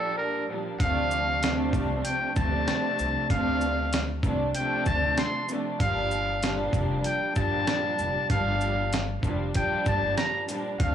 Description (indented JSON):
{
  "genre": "hip hop, boom-bap hip-hop",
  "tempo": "96 BPM",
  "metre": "4/4",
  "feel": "swing 59% on 16ths",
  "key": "G minor",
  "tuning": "A4 = 440 Hz",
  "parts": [
    { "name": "trumpet with metal mute", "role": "melody", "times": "0.0-10.9 s", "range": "A4 to C6", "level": "-29 LUFS", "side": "left 1 dB", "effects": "high-pass filter, low-pass filter, analog delay" },
    { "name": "bright symphonic string section", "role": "accompaniment", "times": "0.0-10.9 s", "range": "Bb2 to D4", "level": "-29 LUFS", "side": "right 1 dB", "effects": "cassette tape, high-pass filter, low-pass filter" },
    { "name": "upright bass", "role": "bass", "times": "0.8-10.9 s", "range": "F1 to D2", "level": "-31 LUFS", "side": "left 1 dB", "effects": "tube saturation" },
    { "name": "dusty soul sampler-style drum kit", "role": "drums", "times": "0.8-10.9 s", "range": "hi-hat, kick drum, shaker, snare drum", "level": "-29 LUFS", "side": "equal", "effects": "none" }
  ],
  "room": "small room reverb",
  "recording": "dry, gritty hardware recording, transformer saturation, small room ambience",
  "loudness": "-24 LUFS",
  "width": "side -9 dB against mid",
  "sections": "0.8-10.9 A section",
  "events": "break 0.0-0.8",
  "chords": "0.0 Gm7; 0.8 Dm7; 5.8 Gm7"
}